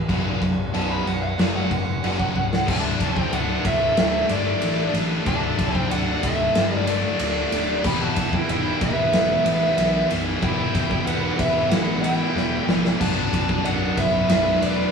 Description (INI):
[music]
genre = hard rock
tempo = 93 BPM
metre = 4/4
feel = straight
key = unclear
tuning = A4 = 439 Hz
[part]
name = overdriven tonewheel organ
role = sustained chords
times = 0.0-14.9 s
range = F#3 to E5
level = -38 LUFS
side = left 2 dB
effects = none
[part]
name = distorted electric guitar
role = riff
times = 0.0-14.9 s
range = B1 to F#3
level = -28 LUFS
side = right 4 dB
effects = distortion
[part]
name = heavy high-gain guitar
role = riff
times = 0.0-14.9 s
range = B1 to F#3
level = -30 LUFS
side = left 6 dB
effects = distortion
[part]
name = modern bright picked electric bass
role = bass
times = 0.0-14.9 s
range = B0 to B1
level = -29 LUFS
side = left 2 dB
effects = none
[part]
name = big rock drum kit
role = drums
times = 0.1-14.8 s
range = crash cymbal, kick drum, ride cymbal, snare drum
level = -24 LUFS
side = left 1 dB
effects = none
[part]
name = bluesy overdriven lead guitar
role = melody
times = 0.7-14.9 s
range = D5 to B5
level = -24 LUFS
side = right 1 dB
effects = distortion
[part]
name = octave-fuzz lead guitar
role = second line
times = 2.7-14.9 s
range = A3 to G4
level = -31 LUFS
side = right 1 dB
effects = distortion
[part]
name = heavy high-gain guitar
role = riff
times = 2.7-14.9 s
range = B1 to E4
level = -31 LUFS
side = left 2 dB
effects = distortion
[sound]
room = moderate studio reverb, RT60 0.9 s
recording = band playing live in one room, studio reverb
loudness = -19 LUFS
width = side -6 dB against mid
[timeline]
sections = 0.0-2.7 A section; 2.7-14.9 B section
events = lead electric guitar solo 0.0-2.7; drum fill 2.3-2.7, 12.4-13.0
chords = 0.1 B5; 1.4 F#5; 2.7 D; 7.8 Em; 13.0 Bm